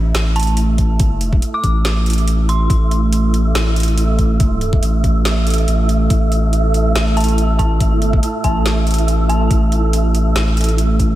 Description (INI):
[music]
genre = deep dubstep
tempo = 141 BPM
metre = 4/4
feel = swing 54% on 16ths, half-time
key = unclear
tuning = A4 = 441 Hz
[part]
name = dark analog pad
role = sustained chords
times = 0.2-11.2 s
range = A3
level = -22 LUFS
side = right 4 dB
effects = chorus
[part]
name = saturated sub bass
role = bass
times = 0.0-11.2 s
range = A1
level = -15 LUFS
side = equal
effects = none
[part]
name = wind-like tuned noise texture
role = texture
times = 0.0-11.2 s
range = E4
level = -24 LUFS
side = right 1 dB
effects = built-in reverb, ensemble chorus
[part]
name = garage drum kit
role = drums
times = 0.1-11.1 s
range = hi-hat, snare drum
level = -24 LUFS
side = equal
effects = overdrive
[part]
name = dark detuned synth bell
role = melody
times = 0.4-2.8, 7.2-9.6 s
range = A5 to D6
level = -26 LUFS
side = equal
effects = chorus, dub echo
[part]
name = electronic kick drum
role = drums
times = 0.8-11.1 s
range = none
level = -16 LUFS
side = equal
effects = overdrive
[sound]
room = light reverb, digital ambience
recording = none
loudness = -13 LUFS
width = side -14 dB against mid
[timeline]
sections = 0.0-11.2 A section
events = none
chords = 0.0 A5